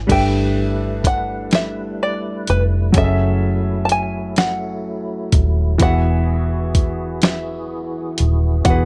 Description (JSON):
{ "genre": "slow six-eight R&B", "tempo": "42 BPM (dotted quarters)", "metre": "6/8", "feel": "straight", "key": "unclear", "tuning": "A4 = 440 Hz", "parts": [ { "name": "open-back banjo", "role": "melody", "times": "0.0-8.9 s", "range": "B4 to A5", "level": "-25 LUFS", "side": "equal", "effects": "slapback echo" }, { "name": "warm concert grand piano", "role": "accompaniment", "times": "0.0-8.9 s", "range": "E3 to E5", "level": "-26 LUFS", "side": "equal", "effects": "none" }, { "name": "vintage muted fingered electric bass", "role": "bass", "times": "0.0-8.9 s", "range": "D#1 to G1", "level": "-21 LUFS", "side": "equal", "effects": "none" }, { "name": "percussive tonewheel organ", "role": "sustained chords", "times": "0.1-8.9 s", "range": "E3 to B4", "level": "-30 LUFS", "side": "equal", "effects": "chorus vibrato, slow rotary speaker" }, { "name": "dusty soul sampler-style drum kit", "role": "drums", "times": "0.1-8.9 s", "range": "crash cymbal, hi-hat, kick drum, snare drum", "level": "-20 LUFS", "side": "equal", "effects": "none" } ], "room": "little or no reverb", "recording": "dark, warm production", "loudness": "-19 LUFS", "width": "mono", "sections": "0.1-8.9 A section", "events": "none", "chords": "0.1 G69; 2.9 F#m7; 5.8 Emaj9", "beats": "| 0.08 1.51 | 2.94 4.37 | 5.80 7.23 | 8.65" }